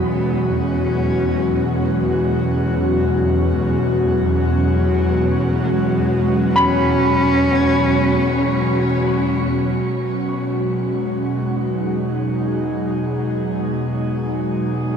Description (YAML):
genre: ambient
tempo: free time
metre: none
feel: none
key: E major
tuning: A4 = 440 Hz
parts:
  - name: dark cello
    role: melody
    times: 0.0-9.0 s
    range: F#3 to C#4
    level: -24 LUFS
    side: equal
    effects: ping-pong delay
  - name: airy breathy pad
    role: sustained chords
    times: 0.0-15.0 s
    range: B2 to G#4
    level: -18 LUFS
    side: equal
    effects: chorus
  - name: felt-muted upright piano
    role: arpeggios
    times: 0.0-15.0 s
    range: B5 to C#6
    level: -24 LUFS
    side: equal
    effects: ping-pong delay
  - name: warm studio double bass section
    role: bass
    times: 0.0-15.0 s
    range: E2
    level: -24 LUFS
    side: equal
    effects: none
room: wet shimmer reverb, RT60 8.1 s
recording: dark, warm production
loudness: -16 LUFS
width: side -7 dB against mid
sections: 0.0-9.9 A section; 9.9-15.0 B section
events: fade-in on cello 0.0-9.9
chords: 0.0 E69